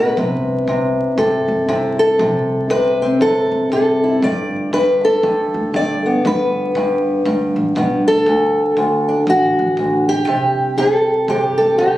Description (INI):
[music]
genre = acoustic country blues, solo or duo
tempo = 119 BPM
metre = 4/4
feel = swing 60% on 8ths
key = G major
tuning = A4 = 442 Hz
[part]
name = fingerpicked old ladder-braced acoustic guitar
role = melody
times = 0.0-12.0 s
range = D2 to D5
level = -14 LUFS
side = equal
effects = none
[part]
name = upright bass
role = bass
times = 0.0-12.0 s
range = G1 to G2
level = -27 LUFS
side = equal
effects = none
[part]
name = kick drum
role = drums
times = 0.2-11.9 s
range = none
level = -31 LUFS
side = right 1 dB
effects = none
[sound]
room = light reverb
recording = recorded on a phone in the room, club reverb, vinyl crackle, compression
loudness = -14 LUFS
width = side -15 dB against mid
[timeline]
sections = 0.0-12.0 A section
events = none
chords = 0.2 C5; 4.2 G; 8.3 D; 10.3 C5